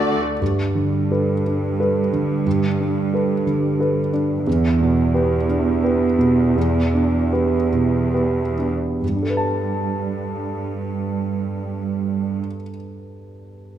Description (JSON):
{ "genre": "cinematic", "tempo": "66-91 BPM", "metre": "3/4", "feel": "rubato", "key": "G major", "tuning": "A4 = 440 Hz", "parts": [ { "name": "warm baby grand piano", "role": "accompaniment", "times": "0.0-13.8 s", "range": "D2 to A5", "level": "-20 LUFS", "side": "equal", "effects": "none" }, { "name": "concert harp", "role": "arpeggios", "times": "0.0-3.8 s", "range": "D3 to F#4", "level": "-42 LUFS", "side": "left 6 dB", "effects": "none" }, { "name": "muted symphonic cello section", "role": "bass", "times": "0.0-12.4 s", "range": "E2 to D3", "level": "-23 LUFS", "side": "right 4 dB", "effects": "none" } ], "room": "light reverb", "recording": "none", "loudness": "-18 LUFS", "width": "side -10 dB against mid", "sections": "0.4-9.0 A section; 9.0-13.8 B section", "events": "slowing down 3.5-9.0", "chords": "0.4 Gadd9; 4.5 Em7; 9.0 Gadd9" }